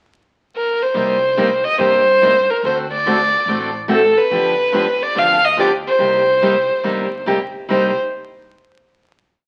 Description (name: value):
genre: acoustic string swing (jazz manouche)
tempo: 143 BPM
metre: 4/4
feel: swing 63% on 8ths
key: C minor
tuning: A4 = 441 Hz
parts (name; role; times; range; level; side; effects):
- warm violin; melody; 0.6-7.9 s; A4 to F5; -17 LUFS; equal; none
- picked steel-string acoustic guitar; accompaniment; 0.9-7.9 s; C3 to A4; -23 LUFS; equal; none
- upright bass; bass; 0.9-7.9 s; G1 to G2; -36 LUFS; equal; none
room: moderate large studio reverb, RT60 1.1 s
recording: very old 78 rpm record, vinyl crackle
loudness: -16 LUFS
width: mono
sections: 0.0-0.9 pickup bar; 0.9-7.7 A section; 7.7-9.4 final chord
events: none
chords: 0.0 N.C.; 0.9 Cm7; 2.6 D7; 4.3 G7; 6.0 Cm7